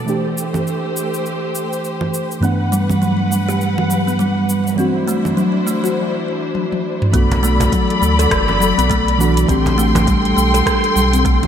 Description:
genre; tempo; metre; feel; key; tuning
organic downtempo; 102 BPM; 4/4; swing 60% on 16ths; A dorian; A4 = 440 Hz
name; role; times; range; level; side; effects
muted felt-like synth keys; accompaniment; 0.0-11.5 s; G2 to F#5; -21 LUFS; right 2 dB; chorus, sidechain pumping, ping-pong delay
dark studio string section; sustained chords; 0.0-11.5 s; F#3 to C6; -20 LUFS; left 1 dB; sidechain pumping
afro-pop drum kit; drums; 0.1-11.5 s; congas, hi-hat, rim click, shaker, toms; -23 LUFS; right 1 dB; overdrive, gated reverb
kalimba; arpeggios; 2.4-11.4 s; F#3 to A4; -18 LUFS; left 1 dB; ping-pong delay
warm sub bass; bass; 7.1-11.5 s; F#1 to D2; -18 LUFS; equal; sidechain pumping
electronic kick drum; drums; 7.1-11.4 s; none; -20 LUFS; equal; overdrive
cajon; percussion; 7.3-10.0 s; none; -25 LUFS; right 1 dB; none
room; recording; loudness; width
moderate lush hall reverb, RT60 2.7 s; bright 1980s-style digital production; -14 LUFS; side -9 dB against mid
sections
0.0-7.1 A section; 7.1-11.5 B section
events
break 6.0-7.1; drum fill 6.5-7.1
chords
0.1 Am7; 2.4 Gmaj7; 4.8 D9; 7.1 Bm7; 9.5 Am7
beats
| 0.07 0.66 1.25 1.84 | 2.43 3.02 3.60 4.19 | 4.78 5.37 5.96 6.54 | 7.13 7.72 8.31 8.90 | 9.49 10.07 10.66 11.25

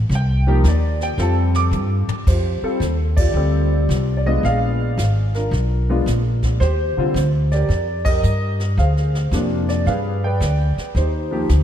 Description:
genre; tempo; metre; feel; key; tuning
jazz piano trio; 111 BPM; 4/4; swing 66% on 8ths; unclear; A4 = 440 Hz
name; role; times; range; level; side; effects
upright bass; bass; 0.0-11.6 s; Ab1 to G2; -18 LUFS; equal; none
jazz brush drum kit; drums; 0.1-11.6 s; brushed snare drum, crash cymbal, hi-hat, kick drum, snare drum, toms; -25 LUFS; equal; none
warm grand piano; melody; 0.2-11.6 s; C3 to D6; -22 LUFS; equal; analog chorus, analog delay
room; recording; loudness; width
light reverb, small room ambience; none; -16 LUFS; side -10 dB against mid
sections
0.0-2.3 A section; 2.3-11.6 B section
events
grand piano solo 0.0-2.3; drum fill 1.2-2.3; band accent 3.1, 8.0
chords
0.1 Cm7; 1.2 Fadd9; 2.3 F13; 4.4 Bb7b9; 6.6 Ebmaj7; 8.8 Dm7b5; 9.9 G; 10.9 Cm9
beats
| 0.10 0.64 1.19 1.73 | 2.27 2.81 3.35 3.90 | 4.44 4.98 5.52 6.07 | 6.61 7.15 7.69 8.24 | 8.78 9.32 9.86 10.41 | 10.95 11.49

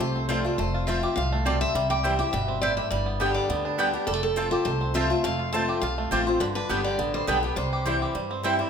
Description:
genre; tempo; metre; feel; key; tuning
bluegrass; 206 BPM; 4/4; straight; unclear; A4 = 441 Hz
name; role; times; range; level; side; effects
bluegrass banjo; melody; 0.0-8.7 s; D3 to G4; -31 LUFS; right 3 dB; none
picked steel-string acoustic guitar; melody; 0.0-8.4 s; A4 to A5; -29 LUFS; equal; none
picked steel-string acoustic guitar; accompaniment; 0.0-8.7 s; F2 to G4; -29 LUFS; left 4 dB; none
upright bass; bass; 0.0-8.6 s; F1 to G2; -30 LUFS; equal; none
mandolin; stabs; 0.3-8.5 s; B3 to A5; -30 LUFS; right 3 dB; none
room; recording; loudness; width
moderate large studio reverb, RT60 1.4 s; minimal, uncompressed stereo recording; -23 LUFS; side -7 dB against mid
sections
0.0-8.7 A section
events
none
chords
0.0 F; 1.7 C; 2.9 G; 4.1 F; 6.4 G; 7.6 C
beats
0.00 0.29 | 0.58 0.88 1.17 1.46 | 1.75 2.04 2.33 2.62 | 2.91 3.20 3.50 3.79 | 4.08 4.37 4.66 4.95 | 5.24 5.53 5.82 6.12 | 6.41 6.70 6.99 7.28 | 7.57 7.86 8.15 8.44

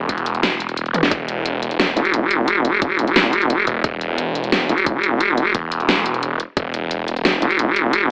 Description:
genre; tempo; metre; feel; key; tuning
dark technical drum and bass; 176 BPM; 4/4; straight; unclear; A4 = 441 Hz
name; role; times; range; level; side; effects
snarling distorted saw bass; bass; 0.0-7.4 s; E1; -21 LUFS; equal; distortion, overdrive
dubstep drum kit; drums; 0.1-8.0 s; hi-hat, snare drum, toms; -19 LUFS; equal; none
electronic kick drum; drums; 0.1-6.6 s; none; -22 LUFS; equal; none
vowel-sweep wobble bass; bass; 2.0-8.1 s; E1; -15 LUFS; equal; chorus, tube saturation
room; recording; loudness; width
little or no reverb; AM radio sound; -16 LUFS; side -38 dB against mid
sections
0.0-8.1 A section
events
drum fill 0.9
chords
none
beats
0.09 0.43 0.77 | 1.11 1.46 1.80 2.14 | 2.48 2.82 3.16 3.50 | 3.84 4.18 4.52 4.86 | 5.21 5.55 5.89 6.23 | 6.57 6.91 7.25 7.59 | 7.93

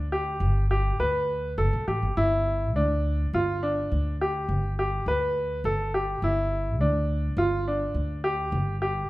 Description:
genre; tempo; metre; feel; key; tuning
contemporary instrumental, chamber music in an uneven meter; 104 BPM; 7/4; straight; G mixolydian; A4 = 440 Hz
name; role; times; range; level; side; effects
bright grand piano; arpeggios; 0.0-9.1 s; D4 to B4; -26 LUFS; equal; none
upright bass; bass; 0.0-9.0 s; G1 to D2; -27 LUFS; equal; none
room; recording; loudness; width
light reverb; faint mains hum; -24 LUFS; side -18 dB against mid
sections
0.0-9.1 A section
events
none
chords
0.0 G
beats
0.41 0.99 1.58 | 2.17 2.75 3.34 3.92 4.50 5.08 5.65 | 6.23 6.80 7.38 7.95 8.53

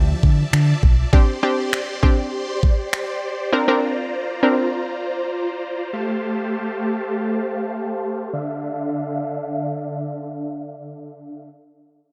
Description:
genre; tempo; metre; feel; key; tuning
dance-pop; 100 BPM; 4/4; straight; D minor; A4 = 440 Hz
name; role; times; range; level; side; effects
analog pluck; accompaniment; 0.0-5.4 s; C4 to Bb4; -23 LUFS; equal; chorus, sidechain pumping, low-pass filter
supersaw chords; sustained chords; 0.0-11.5 s; D3 to C6; -27 LUFS; equal; phaser, sidechain pumping, low-pass filter
vintage muted fingered electric bass; bass; 0.0-1.0 s; B1 to D3; -20 LUFS; equal; sidechain pumping
smooth R&B drum kit; drums; 0.2-3.1 s; finger snaps, kick drum; -19 LUFS; equal; none
room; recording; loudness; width
light reverb; none; -21 LUFS; mono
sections
0.0-8.3 A section; 8.3-10.7 B section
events
filter sweep 0.0-8.3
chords
0.0 Dmadd9; 1.1 Csus2; 3.5 Bbadd9; 5.9 Fadd9/A; 8.3 Dmadd9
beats
0.53 | 1.13 1.73 2.33 2.93 | 3.53 4.13 4.73 5.33 | 5.93 6.53 7.13 7.73 | 8.33 8.93 9.53 10.13

